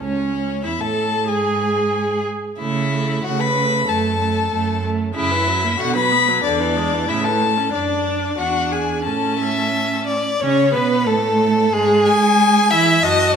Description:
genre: quick classical-period movement for string quartet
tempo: 92 BPM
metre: 2/4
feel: straight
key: A major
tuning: A4 = 440 Hz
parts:
  - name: rich violin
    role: melody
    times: 0.0-13.4 s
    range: G#4 to B5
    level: -22 LUFS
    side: left 8 dB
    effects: none
  - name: rich violin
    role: second line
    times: 0.0-13.4 s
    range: C#4 to G#5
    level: -20 LUFS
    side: left 2 dB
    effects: none
  - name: rich viola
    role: accompaniment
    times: 0.0-13.4 s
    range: C#3 to A4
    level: -23 LUFS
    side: right 4 dB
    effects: none
  - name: rich cello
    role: bass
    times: 0.0-13.4 s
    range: C#2 to G#3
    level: -23 LUFS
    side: right 6 dB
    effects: none
room: wet recital hall reverb, RT60 1.7 s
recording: minimal, uncompressed stereo recording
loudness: -16 LUFS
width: side -7 dB against mid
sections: 0.0-10.4 A section; 10.4-13.4 B section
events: none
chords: 0.0 A/C#; 1.3 N.C.; 2.6 A/C#; 3.9 F#m; 5.2 F#7; 5.8 Bm; 6.4 E7; 7.1 A; 7.7 D/F#; 8.4 E7; 9.1 A; 10.4 Bsus2; 11.1 N.C.; 11.7 E/G#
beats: 0.64 | 1.29 1.94 | 2.59 3.24 | 3.88 4.52 | 5.16 5.80 | 6.44 7.09 | 7.74 8.39 | 9.06 9.73 | 10.41 11.06 | 11.72 12.39 | 13.04

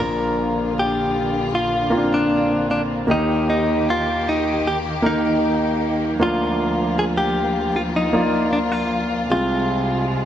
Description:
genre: pop ballad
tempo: 77 BPM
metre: 4/4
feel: straight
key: Bb mixolydian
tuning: A4 = 441 Hz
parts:
  - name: direct-recorded clean electric guitar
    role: melody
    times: 0.0-10.1 s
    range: D4 to Bb4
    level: -22 LUFS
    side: equal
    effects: none
  - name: clear concert grand piano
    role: accompaniment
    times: 0.0-10.2 s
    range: Bb1 to D5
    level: -21 LUFS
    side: equal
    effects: none
  - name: warm studio string section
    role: sustained chords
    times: 0.0-10.2 s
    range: C3 to G4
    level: -26 LUFS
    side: left 1 dB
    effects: none
room: moderate plate reverb, RT60 2.9 s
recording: dark, warm production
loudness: -18 LUFS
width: side -10 dB against mid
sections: 0.0-10.2 A section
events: none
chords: 0.0 Bb; 3.1 Eb; 6.2 Bb/D; 9.3 Fm/C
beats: 0.74 1.52 2.30 | 3.08 3.86 4.64 5.42 | 6.20 6.98 7.76 8.54 | 9.32 10.10

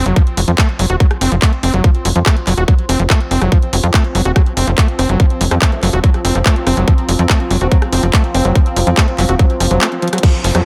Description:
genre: psychedelic trance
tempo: 143 BPM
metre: 4/4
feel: straight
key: F major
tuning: A4 = 440 Hz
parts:
  - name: overdriven acid bass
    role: riff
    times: 0.0-10.6 s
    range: F3 to Gb4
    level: -22 LUFS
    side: equal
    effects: distortion, sidechain pumping, digital delay
  - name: tight sequencer bass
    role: bass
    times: 0.0-10.6 s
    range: Eb1 to F2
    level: -17 LUFS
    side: equal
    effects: none
  - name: deep dark ambient pad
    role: texture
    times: 0.2-10.7 s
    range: F4 to C6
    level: -27 LUFS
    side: equal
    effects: chorus, built-in reverb, sidechain pumping
  - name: garage drum kit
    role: drums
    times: 0.1-10.6 s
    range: crash cymbal, handclaps, hi-hat, rim click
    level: -22 LUFS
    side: equal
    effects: none
  - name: electronic kick drum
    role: drums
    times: 0.2-10.3 s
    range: none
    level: -14 LUFS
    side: equal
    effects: none
  - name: pulsing gated texture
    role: sustained chords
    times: 3.5-10.7 s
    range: F3 to C4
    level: -27 LUFS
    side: equal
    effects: chorus, built-in reverb, sidechain pumping
  - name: formant-sweep wobble bass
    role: second line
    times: 5.0-9.9 s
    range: F3 to C4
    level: -32 LUFS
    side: equal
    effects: none
  - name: downlifter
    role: sound effects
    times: 10.2-10.7 s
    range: none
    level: -27 LUFS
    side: equal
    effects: none
room: little or no reverb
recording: none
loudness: -13 LUFS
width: mono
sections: 0.0-10.2 A section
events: drum fill 10.0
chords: 0.0 F5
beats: | 0.16 0.58 1.00 1.42 | 1.84 2.26 2.68 3.10 | 3.52 3.94 4.36 4.78 | 5.20 5.62 6.04 6.46 | 6.88 7.30 7.71 8.13 | 8.55 8.97 9.39 9.81 | 10.23

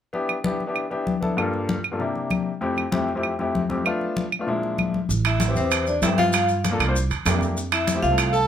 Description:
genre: Afro-Cuban jazz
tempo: 194 BPM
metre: 4/4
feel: straight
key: A minor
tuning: A4 = 440 Hz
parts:
  - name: clear grand piano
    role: accompaniment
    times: 0.1-8.4 s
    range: F2 to C5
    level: -26 LUFS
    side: left 2 dB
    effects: none
  - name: congas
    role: percussion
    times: 0.1-8.5 s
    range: none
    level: -28 LUFS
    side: left 4 dB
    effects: none
  - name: claves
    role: percussion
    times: 0.3-8.3 s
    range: none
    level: -28 LUFS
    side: right 6 dB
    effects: none
  - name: upright bass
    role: bass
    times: 5.1-8.5 s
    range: A1 to G2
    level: -24 LUFS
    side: right 2 dB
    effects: none
  - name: maracas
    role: percussion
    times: 5.1-8.5 s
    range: none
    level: -34 LUFS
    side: left 2 dB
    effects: none
  - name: timbales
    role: percussion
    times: 5.2-8.3 s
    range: none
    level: -26 LUFS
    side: right 8 dB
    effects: none
  - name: vibraphone with medium hard mallets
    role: melody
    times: 5.3-8.5 s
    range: C5 to A5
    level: -24 LUFS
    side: equal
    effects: none
  - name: clear tenor saxophone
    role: second line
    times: 5.3-8.5 s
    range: C4 to A4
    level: -27 LUFS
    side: left 1 dB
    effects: none
room: light reverb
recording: close, detailed microphones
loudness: -21 LUFS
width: side -9 dB against mid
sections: 0.1-5.1 A section; 5.1-8.5 B section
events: none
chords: 0.1 Em7; 1.4 Gm7; 2.0 C7; 2.6 Fmaj7; 3.9 Bm7b5; 4.5 Bb7#11; 5.1 Am9; 6.3 Gm7; 6.9 C7; 7.6 Fmaj7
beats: | 0.13 0.44 0.75 1.06 | 1.37 1.68 1.99 2.31 | 2.62 2.92 3.23 3.54 | 3.85 4.16 4.47 4.78 | 5.09 5.40 5.71 6.02 | 6.33 6.64 6.95 7.25 | 7.56 7.87 8.18

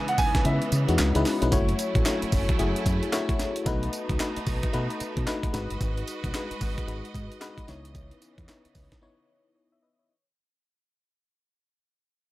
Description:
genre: R&B, new jack swing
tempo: 112 BPM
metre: 4/4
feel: swing 62% on 16ths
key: F# dorian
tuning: A4 = 441 Hz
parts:
  - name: clear concert grand piano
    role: melody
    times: 0.0-1.2 s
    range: E5 to G#5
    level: -29 LUFS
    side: right 2 dB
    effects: tape echo
  - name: FM electric piano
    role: accompaniment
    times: 0.0-10.2 s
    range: G#3 to E5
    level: -30 LUFS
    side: left 3 dB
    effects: chorus
  - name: clear studio string section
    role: sustained chords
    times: 0.0-10.1 s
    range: C#3 to D#5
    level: -35 LUFS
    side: right 3 dB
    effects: none
  - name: breakbeat sampler-style drum kit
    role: drums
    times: 0.1-9.0 s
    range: handclaps, hi-hat, kick drum, snare drum, tambourine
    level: -28 LUFS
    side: equal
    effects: none
  - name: deep dub fingered electric bass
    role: bass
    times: 0.5-8.9 s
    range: F#1 to C#3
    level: -28 LUFS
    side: equal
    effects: none
room: little or no reverb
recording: none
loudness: -24 LUFS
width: side -17 dB against mid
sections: 0.0-1.5 A section; 1.5-10.1 B section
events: kick muted 0.4-1.5; fade-out 1.5-10.1; break 9.0-10.1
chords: 0.0 C#m9; 1.5 F#m7; 3.7 B7; 5.5 G#m7; 7.7 C#m9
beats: 0.45 0.98 | 1.52 2.06 2.59 3.13 | 3.66 4.20 4.73 5.27 | 5.80 6.34 6.88 7.41 | 7.95 8.48 9.02 9.55

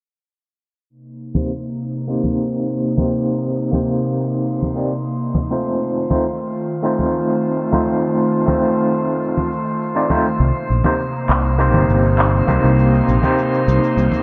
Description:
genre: sunset chillout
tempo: 101 BPM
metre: 4/4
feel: straight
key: C dorian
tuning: A4 = 440 Hz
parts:
  - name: airy breathy pad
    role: sustained chords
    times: 1.1-14.2 s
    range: C3 to F4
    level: -24 LUFS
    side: equal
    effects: chorus
  - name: electronic shaker and handclaps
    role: drums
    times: 0.9-14.2 s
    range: none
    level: -24 LUFS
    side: equal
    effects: none
  - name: drifting glass-harmonics texture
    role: texture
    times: 1.7-14.2 s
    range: C5 to C6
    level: -32 LUFS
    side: equal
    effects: chorus, built-in reverb
  - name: overdriven tine electric piano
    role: accompaniment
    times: 1.3-14.2 s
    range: A3 to D5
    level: -22 LUFS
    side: equal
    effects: medium tremolo, vintage 12-bit sampler grit, low-pass filter, delay
  - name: congas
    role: percussion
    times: 1.4-14.2 s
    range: none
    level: -24 LUFS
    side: equal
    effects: none
  - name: fingered electric bass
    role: bass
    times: 10.4-14.1 s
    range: G1 to C2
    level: -18 LUFS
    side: equal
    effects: none
room: moderate plate reverb, RT60 1.8 s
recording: bright 1980s-style digital production, low-pass filter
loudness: -18 LUFS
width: mono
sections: 0.9-14.2 A section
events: filter sweep on tine electric piano 0.9-14.2; filter sweep 0.9-14.2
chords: 0.9 Cm7; 5.7 F7; 10.4 Cm7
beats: | 0.90 1.50 2.09 2.69 | 3.28 3.87 4.47 5.06 | 5.66 6.25 6.84 7.44 | 8.03 8.63 9.22 9.81 | 10.41 11.00 11.60 12.19 | 12.78 13.38 13.97

